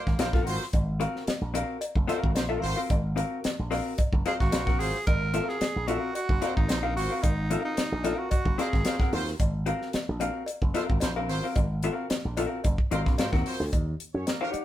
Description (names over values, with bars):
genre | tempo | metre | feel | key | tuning
funk | 111 BPM | 4/4 | straight | unclear | A4 = 440 Hz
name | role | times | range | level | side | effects
raspy tenor saxophone | melody | 0.0-0.5, 4.3-9.1 s | Bb3 to Bb4 | -32 LUFS | right 2 dB | none
clear horn section | second line | 0.0-14.5 s | Gb3 to Db5 | -36 LUFS | right 2 dB | none
slap bass with an envelope filter | bass | 0.1-14.6 s | Gb1 to Ab2 | -30 LUFS | equal | none
tight funk drum kit | drums | 0.1-14.6 s | hi-hat, kick drum, snare drum | -28 LUFS | equal | none
vintage hollow-body jazz guitar | accompaniment | 0.2-14.6 s | C4 to Gb5 | -30 LUFS | left 3 dB | none
cowbell | percussion | 0.2-14.6 s | none | -37 LUFS | left 2 dB | none
room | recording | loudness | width
light reverb | band playing live in one room | -25 LUFS | side -12 dB against mid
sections
0.0-13.7 A section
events
none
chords
0.0 Ab13; 13.7 Eb7#9